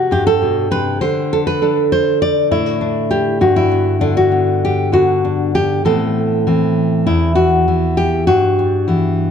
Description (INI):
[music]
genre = folk, solo fingerstyle acoustic guitar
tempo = 99 BPM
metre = 4/4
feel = straight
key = unclear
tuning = A4 = 442 Hz
[part]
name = nylon-string guitar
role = solo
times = 0.0-9.3 s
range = E2 to D5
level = -13 LUFS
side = equal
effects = none
[sound]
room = moderate concert hall reverb, RT60 1.8 s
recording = dark, warm production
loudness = -13 LUFS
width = side -7 dB against mid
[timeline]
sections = 0.0-5.9 A section; 5.9-9.3 B section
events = none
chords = 0.0 C5; 1.0 D5; 3.4 G; 5.9 Amadd9; 8.3 Em/G